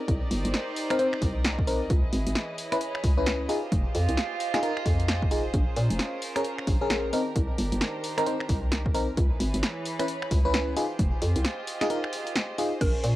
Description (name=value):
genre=UK garage, two-step garage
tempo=132 BPM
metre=4/4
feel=swing 61% on 16ths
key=unclear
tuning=A4 = 440 Hz
part: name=clear chamber violin section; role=sustained chords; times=0.0-13.2 s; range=Db4 to Eb5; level=-38 LUFS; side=equal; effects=sidechain pumping, cassette tape
part: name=warm chamber string section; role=texture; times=0.0-13.2 s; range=Eb3 to Cb6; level=-36 LUFS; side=right 3 dB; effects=sidechain pumping, cassette tape
part: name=hollow knocking FM bass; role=bass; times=0.1-13.2 s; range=F1 to Bb2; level=-27 LUFS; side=equal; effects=none
part: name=electronic kick drum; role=drums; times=0.1-12.9 s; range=none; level=-27 LUFS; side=equal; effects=cassette tape
part: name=punchy analog drum machine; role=drums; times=0.1-13.1 s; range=crash cymbal, finger snaps, hi-hat, snare drum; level=-31 LUFS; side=equal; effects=cassette tape
part: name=FM electric piano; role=stabs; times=0.9-12.7 s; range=C4 to C5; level=-29 LUFS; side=left 1 dB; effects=chorus, phaser, low-pass filter, cassette tape, tape echo
part: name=mallet-like synth pluck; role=melody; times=12.8-13.0 s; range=Bb4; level=-31 LUFS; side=right 2 dB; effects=chorus, cassette tape
room=light reverb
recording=home recording on cassette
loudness=-24 LUFS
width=side -16 dB against mid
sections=0.0-13.2 A section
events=filter sweep on FM electric piano 0.0-13.2; break 11.9-12.8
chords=0.0 Cm7; 1.9 Dbm7; 3.5 Fm7; 5.5 Bbm7; 7.1 Cm7; 9.2 Dbm7; 10.8 Fm7